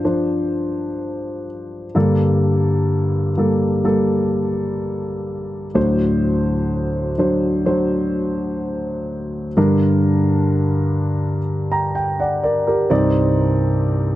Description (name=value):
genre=pop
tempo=63 BPM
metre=4/4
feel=straight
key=G minor from 9.6 s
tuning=A4 = 441 Hz
part: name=dark concert grand piano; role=solo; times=0.0-14.2 s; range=C2 to Bb5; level=-17 LUFS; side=equal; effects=none
room=light reverb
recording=dry, close 1970s-style studio recording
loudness=-17 LUFS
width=side -15 dB against mid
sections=0.0-9.6 A section; 9.6-14.2 B section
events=none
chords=0.0 Dm7/G; 2.0 Gmadd9; 5.8 D7; 9.6 Gm; 12.9 Cmadd9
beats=0.05 1.00 | 1.95 2.90 3.86 4.81 | 5.76 6.71 7.67 8.62 | 9.57 10.52 11.48 12.43 | 13.38